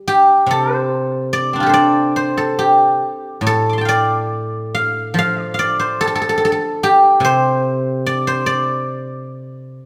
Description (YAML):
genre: chinese traditional, Chinese solo plucked strings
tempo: 71 BPM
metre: 2/4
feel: uneven beats, rubato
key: D yu mode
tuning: A4 = 440 Hz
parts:
  - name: guzheng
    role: solo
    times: 0.0-9.9 s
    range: A2 to D6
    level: -16 LUFS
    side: equal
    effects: none
room: moderate recital hall reverb, RT60 1.6 s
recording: none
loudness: -16 LUFS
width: mono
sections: 0.0-9.9 A section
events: none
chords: none